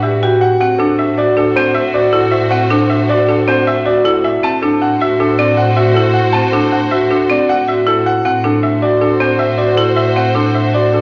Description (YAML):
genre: classical, minimalist pattern music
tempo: 157 BPM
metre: 5/4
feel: straight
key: A dorian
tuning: A4 = 442 Hz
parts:
  - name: clear concert grand piano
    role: melody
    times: 0.0-11.0 s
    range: G4 to A5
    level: -18 LUFS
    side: equal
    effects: none
  - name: rich chamber string section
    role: sustained chords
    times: 0.0-11.0 s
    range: F#4 to C5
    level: -24 LUFS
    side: equal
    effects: none
  - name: marimba with hard mallets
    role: arpeggios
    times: 0.0-11.0 s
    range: C4 to G4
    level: -17 LUFS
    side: equal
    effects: none
  - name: warm studio double bass section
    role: bass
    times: 0.0-11.0 s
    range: A2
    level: -22 LUFS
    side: equal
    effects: none
room: wet recital hall reverb, RT60 1.6 s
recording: nothing above 7.6 kHz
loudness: -13 LUFS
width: mono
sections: 0.0-11.0 A section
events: none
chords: 0.0 Gmaj7/A; 0.6 Am6